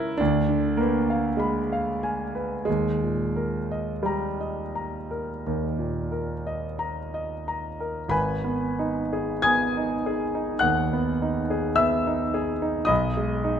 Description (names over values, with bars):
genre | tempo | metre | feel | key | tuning
classical, romantic nocturne for solo piano | 42-55 BPM | 4/4 | rubato | G# minor | A4 = 440 Hz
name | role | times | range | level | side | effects
warm concert grand piano | solo | 0.0-13.6 s | G#1 to G#6 | -23 LUFS | equal | none
room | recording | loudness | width
moderate recital hall reverb, RT60 1.6 s | close, detailed microphones | -23 LUFS | side -8 dB against mid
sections
0.0-8.1 A section; 8.1-13.6 B section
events
none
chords
0.2 Ddim7; 2.7 D#; 8.1 G#m; 12.9 G#m/B